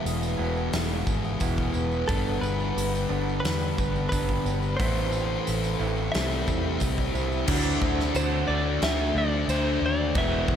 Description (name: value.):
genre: rock, shoegaze and dream pop.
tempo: 89 BPM.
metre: 4/4.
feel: straight.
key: D mixolydian.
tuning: A4 = 439 Hz.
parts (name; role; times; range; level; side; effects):
electric guitar through a small old amp; arpeggios; 0.0-10.6 s; E3 to G#4; -36 LUFS; equal; lush chorus, diffuse ambient delay.
electric guitar through a small old amp; riff; 0.0-10.6 s; G2 to F#4; -32 LUFS; right 6 dB; reverse reverb.
thick fuzz guitar; riff; 0.0-10.6 s; E2 to D4; -30 LUFS; left 7 dB; distortion, analog chorus.
vintage muted fingered electric bass; bass; 0.1-10.6 s; E1 to E2; -30 LUFS; equal; none.
huge arena drum kit; drums; 0.1-10.6 s; crash cymbal, hi-hat, kick drum, snare drum; -31 LUFS; equal; none.
tambourine; percussion; 0.1-9.6 s; none; -44 LUFS; right 9 dB; none.
direct-recorded clean electric guitar; melody; 2.1-10.6 s; A4 to E5; -32 LUFS; equal; diffuse ambient delay.
crunchy overdriven guitar; riff; 7.5-10.6 s; E2 to D4; -32 LUFS; left 1 dB; none.
room: moderate huge ambient reverb, RT60 7.1 s.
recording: dreamy mix soaked in reverb.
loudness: -23 LUFS.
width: side -9 dB against mid.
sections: 0.0-7.5 A section; 7.5-10.6 B section.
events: none.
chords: 0.0 E; 2.1 G; 4.8 Am; 6.1 C; 7.5 D.